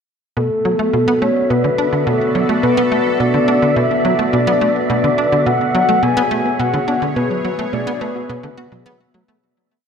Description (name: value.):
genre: ambient, sequencer-driven space music.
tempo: 106 BPM.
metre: 4/4.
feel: straight.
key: B dorian.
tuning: A4 = 439 Hz.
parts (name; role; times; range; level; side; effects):
soft octave-layered synth lead; melody; 0.4-9.1 s; A4 to G#5; -18 LUFS; left 1 dB; chorus, ping-pong delay.
sweeping resonant pad; sustained chords; 0.4-9.4 s; B3 to D5; -19 LUFS; equal; chorus.
soft round pluck; arpeggios; 0.4-9.4 s; F#3 to F#4; -28 LUFS; right 2 dB; none.
tight sequencer bass; riff; 0.4-9.4 s; B2 to F#4; -20 LUFS; equal; analog chorus, ping-pong delay.
wind-like tuned noise texture; texture; 0.9-9.4 s; E5; -28 LUFS; right 5 dB; built-in reverb.
room: wet concert hall reverb, RT60 2.0 s.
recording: none.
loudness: -14 LUFS.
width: side -6 dB against mid.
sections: 0.4-9.4 A section.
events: fade-out 6.4-9.4.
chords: 0.4 Bm7.